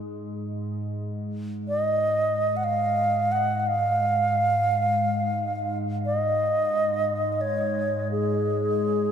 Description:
world meditative, free-time meditation music; free time; A4 = 440 Hz
warbly tape-like pad; drone; 0.0-9.1 s; G#2 to G#3; -29 LUFS; equal; chorus, built-in reverb
alto flute; melody; 1.7-9.1 s; G#4 to F#5; -24 LUFS; right 1 dB
moderate huge ambient reverb, RT60 7.9 s; -22 LUFS; side -8 dB against mid
0.5-9.1 A section
free time

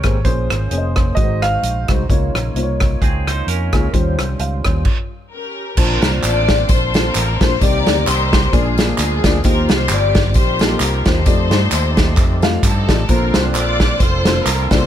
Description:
uptempo gospel; 131 BPM; 4/4; swing 56% on 8ths; Bb major from 5.8 s; A4 = 440 Hz
clear concert grand piano; melody; 0.0-1.9 s; C5 to F5; -22 LUFS; right 3 dB
dark concert grand piano; accompaniment; 0.0-14.8 s; Ab2 to A5; -22 LUFS; left 3 dB
tonewheel organ; sustained chords; 0.0-14.9 s; C3 to G5; -28 LUFS; right 2 dB; overdrive, chorus vibrato, slow rotary speaker
fingered electric bass; bass; 0.0-14.9 s; F1 to G2; -19 LUFS; equal
natural country drum kit; drums; 0.0-14.8 s; crash cymbal, hi-hat, kick drum, rim click, snare drum; -16 LUFS; equal
clean electric guitar; second line; 3.0-3.9 s; C4 to C5; -26 LUFS; right 5 dB; phaser
rich studio string section; melody; 5.3-14.9 s; C4 to D5; -20 LUFS; left 4 dB
tambourine and handclaps; percussion; 5.8-14.8 s; -26 LUFS; right 2 dB
little or no reverb; -13 LUFS; side -10 dB against mid
0.0-5.8 A section; 5.8-14.9 B section
stop 4.9-5.8
0.2 Bbm9; 1.2 Ab7; 2.1 Db69; 3.9 Eb13; 5.8 Bbmaj9; 7.6 Cm9; 8.5 Bb7; 9.4 Eb69; 11.3 F13; 13.1 Bbmaj9
| 0.25 0.71 1.17 1.64 | 2.10 2.56 3.02 3.48 | 3.94 4.40 4.86 5.32 | 5.78 6.24 6.70 7.16 | 7.62 8.07 8.53 8.99 | 9.45 9.90 10.36 10.82 | 11.27 11.73 12.19 12.64 | 13.10 13.55 14.01 14.47

